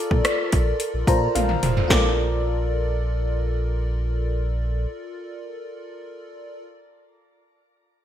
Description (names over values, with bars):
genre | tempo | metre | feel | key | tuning
1980s-style pop | 109 BPM | 4/4 | straight | Bb major | A4 = 440 Hz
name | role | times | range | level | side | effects
FM electric piano with soft pad layer | accompaniment | 0.0-6.6 s | F4 to Bb5 | -26 LUFS | left 1 dB | chorus, shimmer reverb
sub bass with octave | bass | 0.1-4.9 s | F1 to Bb2 | -24 LUFS | equal | none
80s electronic pad drums | drums | 0.1-2.0 s | hi-hat, kick drum, rim click, snare drum, toms | -21 LUFS | equal | gated reverb on snare and toms, gated reverb
room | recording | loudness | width
moderate plate reverb, RT60 1.8 s, digital ambience | bright 1980s-style digital production | -20 LUFS | side -10 dB against mid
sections
0.0-1.9 A section; 1.9-4.1 B section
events
FM electric piano fill 0.8-1.9; drum fill 1.4-1.9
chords
0.0 Bbmaj7